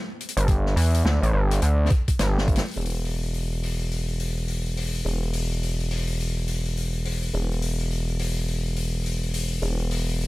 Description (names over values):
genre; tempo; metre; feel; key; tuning
glitch hop; 105 BPM; 4/4; swing 61% on 16ths; E minor pentatonic; A4 = 440 Hz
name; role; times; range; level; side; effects
vintage drum kit; drums; 0.2-10.3 s; hi-hat, snare drum; -31 LUFS; left 3 dB; none
gritty driven synth bass; bass; 0.4-10.3 s; E1 to E2; -23 LUFS; equal; distortion
electronic kick drum; drums; 0.5-2.6 s; none; -21 LUFS; equal; none
room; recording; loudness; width
little or no reverb; none; -22 LUFS; side -21 dB against mid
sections
0.0-2.8 A section; 2.8-10.3 B section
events
drum fill 2.2-2.8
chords
none